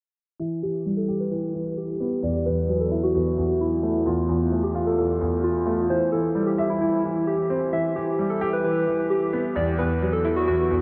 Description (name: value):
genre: hip hop, trap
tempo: 131 BPM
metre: 4/4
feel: half-time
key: E minor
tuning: A4 = 441 Hz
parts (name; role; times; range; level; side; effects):
- warbly lo-fi synth keys; melody; 0.4-10.8 s; E4 to E5; -27 LUFS; equal; chorus, low-pass filter, delay
- clear concert grand piano; accompaniment; 0.4-10.8 s; E2 to E5; -27 LUFS; equal; subtle chorus, low-pass filter
room: wet huge ambient reverb, RT60 6.3 s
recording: dreamy mix soaked in reverb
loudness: -24 LUFS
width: mono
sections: 0.4-10.8 A section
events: filter sweep 0.4-10.8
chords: 0.4 Em; 2.2 Esus4; 4.1 F/E; 5.9 C/E; 7.7 Em; 9.6 Esus2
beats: | 0.40 0.86 1.31 1.77 | 2.23 2.69 3.15 3.60 | 4.06 4.52 4.98 5.44 | 5.89 6.35 6.81 7.27 | 7.73 8.18 8.64 9.10 | 9.56 10.02 10.47